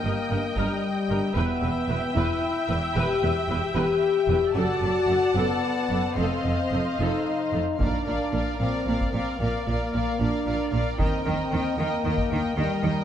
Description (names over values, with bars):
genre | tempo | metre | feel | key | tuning
cinematic, epic orchestral film score | 75 BPM (dotted quarters) | 6/8 | straight | Bb major from 7.8 s | A4 = 440 Hz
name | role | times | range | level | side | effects
warm symphonic violin section | second line | 0.0-13.0 s | D5 to A5 | -32 LUFS | left 2 dB | none
warm symphonic viola section | accompaniment | 0.0-13.0 s | A4 to E5 | -32 LUFS | right 2 dB | none
warm French horn section | sustained chords | 0.0-13.0 s | G3 to G4 | -26 LUFS | left 3 dB | none
rich symphonic cello section | bass | 0.0-12.9 s | E2 to Eb3 | -30 LUFS | right 2 dB | none
rich symphonic double bass section | bass | 0.0-12.9 s | E1 to Eb2 | -30 LUFS | right 2 dB | none
warm symphonic violin section | melody | 7.8-13.0 s | F5 to G5 | -35 LUFS | left 3 dB | none
taiko ensemble | drums | 7.8-12.4 s | none | -30 LUFS | equal | none
room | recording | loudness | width
moderate scoring stage reverb, RT60 1.8 s | none | -22 LUFS | side -9 dB against mid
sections
0.0-7.8 A section; 7.8-13.0 B section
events
none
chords
0.0 Eb/G; 1.4 Em; 4.6 D/F#; 6.2 F7; 7.8 Bb; 11.0 Eb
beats
0.57 | 1.36 2.17 | 2.96 3.75 | 4.55 5.36 | 6.17 6.99 | 7.80 8.61 | 9.40 10.20 | 10.99 11.78 | 12.57